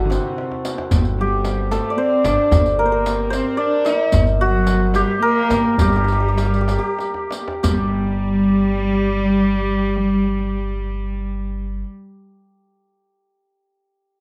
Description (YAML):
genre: Persian modal ensemble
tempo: 59-75 BPM (dotted quarters)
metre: 6/8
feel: straight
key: G avaz esfahan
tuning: A4 = 440 Hz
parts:
  - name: santur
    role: melody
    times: 0.0-11.8 s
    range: C4 to E5-50c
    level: -22 LUFS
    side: equal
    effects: none
  - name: dark chamber cello section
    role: second line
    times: 0.0-11.8 s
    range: C3 to E4-50c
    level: -24 LUFS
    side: equal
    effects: none
  - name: upright bass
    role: bass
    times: 0.0-11.8 s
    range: G1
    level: -25 LUFS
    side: equal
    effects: none
  - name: riq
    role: percussion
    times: 0.1-8.0 s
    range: none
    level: -32 LUFS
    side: equal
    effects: none
  - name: tombak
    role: percussion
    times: 0.1-8.0 s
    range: none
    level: -24 LUFS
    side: equal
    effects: none
room: little or no reverb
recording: close, detailed microphones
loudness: -19 LUFS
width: mono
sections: 0.0-7.6 A section; 7.6-11.7 B section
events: drum fill 0.4-0.9, 7.0-7.6; slowing down 4.1-7.6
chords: none